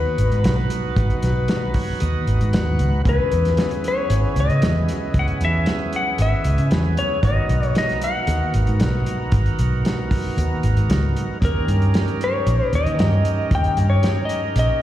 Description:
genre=straight-eighth soul blues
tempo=115 BPM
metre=4/4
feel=straight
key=G# minor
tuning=A4 = 441 Hz
part: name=clean lap steel guitar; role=melody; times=0.0-14.8 s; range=A#4 to G5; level=-24 LUFS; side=left 3 dB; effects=slapback echo, plate reverb
part: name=overdriven tonewheel organ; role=accompaniment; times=0.0-14.8 s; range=B3 to F#5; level=-27 LUFS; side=right 3 dB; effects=slow rotary speaker, plate reverb, slapback echo
part: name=vintage muted fingered electric bass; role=bass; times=0.0-14.7 s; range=G#1 to D#3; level=-18 LUFS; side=equal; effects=none
part: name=warm soul drum kit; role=drums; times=0.2-14.7 s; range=hi-hat, kick drum, snare drum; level=-24 LUFS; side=equal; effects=slapback echo
room=light reverb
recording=live gig heard through the venue's PA, recital hall reverb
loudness=-17 LUFS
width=side -13 dB against mid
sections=0.0-14.8 A section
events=tonewheel organ fill 1.5-3.1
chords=0.0 G#m7; 3.1 C#m7; 7.2 G#m9; 11.4 D#7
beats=0.44 | 0.96 1.49 2.01 2.53 | 3.05 3.58 4.10 4.62 | 5.14 5.67 6.19 6.71 | 7.24 7.76 8.28 8.80 | 9.33 9.85 10.37 10.90 | 11.42 11.94 12.47 12.99 | 13.51 14.04 14.56

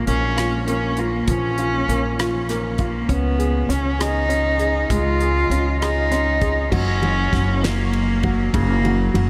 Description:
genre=six-eight pop ballad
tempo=66 BPM (dotted quarters)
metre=6/8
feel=straight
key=F# major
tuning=A4 = 439 Hz
part: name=rich cello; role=melody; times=0.0-9.2 s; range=A#3 to E#4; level=-24 LUFS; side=equal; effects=delay
part: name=bright upright piano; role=accompaniment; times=0.0-9.3 s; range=C#3 to G#4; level=-27 LUFS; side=equal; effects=none
part: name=upright bass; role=bass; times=0.0-9.3 s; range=F#1 to C#2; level=-25 LUFS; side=equal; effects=none
part: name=damped 70s drum kit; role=drums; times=0.1-9.3 s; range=crash cymbal, hi-hat, kick drum, ride cymbal, rim click, snare drum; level=-30 LUFS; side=equal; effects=none
room=moderate huge ambient reverb, RT60 8.4 s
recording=dreamy mix soaked in reverb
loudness=-20 LUFS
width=mono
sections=0.0-6.7 A section; 6.7-9.3 B section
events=none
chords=0.0 A#m; 3.1 C#; 6.7 F#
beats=0.37 | 1.28 2.18 | 3.09 4.00 | 4.91 5.81 | 6.72 7.63 | 8.54

